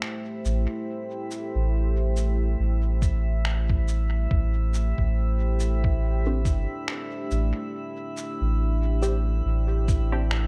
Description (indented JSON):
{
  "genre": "ambient dub",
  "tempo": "70 BPM",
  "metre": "4/4",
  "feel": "swing 57% on 16ths",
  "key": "unclear",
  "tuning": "A4 = 440 Hz",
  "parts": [
    { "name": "deep dark ambient pad", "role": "sustained chords", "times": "0.0-10.5 s", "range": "A3 to G5", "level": "-36 LUFS", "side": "equal", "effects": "chorus, built-in reverb" },
    { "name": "electronic finger snaps and shaker", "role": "drums", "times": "0.0-10.5 s", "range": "none", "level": "-36 LUFS", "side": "equal", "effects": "dub echo" },
    { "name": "drifting glass-harmonics texture", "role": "texture", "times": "0.0-10.5 s", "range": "E4 to E5", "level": "-40 LUFS", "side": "equal", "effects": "chorus, built-in reverb" },
    { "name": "soft dub sub bass", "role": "bass", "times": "0.5-10.5 s", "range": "G1 to A1", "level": "-26 LUFS", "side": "equal", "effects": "tube saturation" },
    { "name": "electronic kick drum", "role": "drums", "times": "3.0-10.1 s", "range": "none", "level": "-27 LUFS", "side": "equal", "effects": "none" },
    { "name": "filtered dub chord stab", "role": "stabs", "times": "6.3-10.3 s", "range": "C4 to G4", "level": "-36 LUFS", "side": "equal", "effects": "phaser, subtle chorus, vintage 12-bit sampler grit, dub echo" }
  ],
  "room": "little or no reverb",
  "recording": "dark, warm production",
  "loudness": "-25 LUFS",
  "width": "mono",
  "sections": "0.0-10.5 A section",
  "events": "none",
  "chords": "0.0 D7sus4",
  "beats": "0.03 | 0.88 1.74 2.60 3.45 | 4.31 5.17 6.03 6.88 | 7.74 8.60 9.45 10.31"
}